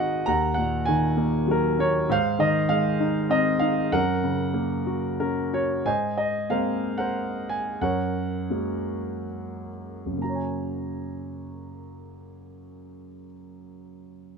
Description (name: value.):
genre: classical, lyrical solo piano.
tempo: 59-100 BPM.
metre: 3/4.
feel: rubato.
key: Gb lydian.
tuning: A4 = 439 Hz.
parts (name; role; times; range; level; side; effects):
warm grand piano; solo; 0.0-14.4 s; Eb2 to Bb5; -24 LUFS; equal; none.
room: moderate studio reverb, RT60 0.5 s.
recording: minimal, uncompressed stereo recording.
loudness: -23 LUFS.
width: side -5 dB against mid.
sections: 0.0-5.9 A section; 5.9-10.2 B section; 10.2-14.4 C section.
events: slowing down 5.9-10.2.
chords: 0.3 Ebm; 2.1 Ab; 3.9 Gb; 5.9 Abadd9; 7.8 Gbadd9.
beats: | 0.28 0.88 1.49 | 2.10 2.71 3.32 | 3.93 4.55 5.20 | 5.86 6.50 7.15 | 7.81 8.50 9.28 | 10.21 11.19 12.14 | 13.07 13.97.